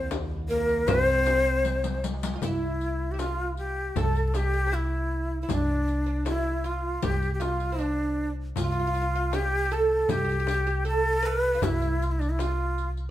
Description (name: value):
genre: Arabic maqam ensemble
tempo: 78 BPM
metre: 4/4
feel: straight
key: C maqam ajam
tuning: A4 = 440 Hz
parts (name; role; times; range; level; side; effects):
- breathy bright ney; melody; 0.0-12.9 s; D4 to C5; -27 LUFS; equal; none
- oud; second line; 0.0-12.9 s; C4 to C5; -33 LUFS; right 4 dB; none
- trombone with bucket mute; second line; 0.0-2.0 s; Bb3 to C4; -33 LUFS; left 4 dB; none
- upright bass; bass; 0.0-13.1 s; C2 to Eb2; -29 LUFS; equal; none
- dark double bass; drone; 0.0-2.5 s; C2; -39 LUFS; equal; none
- darbuka; percussion; 0.1-13.1 s; none; -35 LUFS; right 2 dB; none
- frame drum; percussion; 0.1-12.6 s; none; -34 LUFS; left 5 dB; none
- riq; percussion; 0.1-13.1 s; none; -38 LUFS; left 5 dB; none
room: moderate stone room reverb, RT60 1.1 s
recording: band playing live in one room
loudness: -24 LUFS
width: side -13 dB against mid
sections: 0.0-2.4 A section; 2.4-13.1 B section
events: drum fill 1.7-2.4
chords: none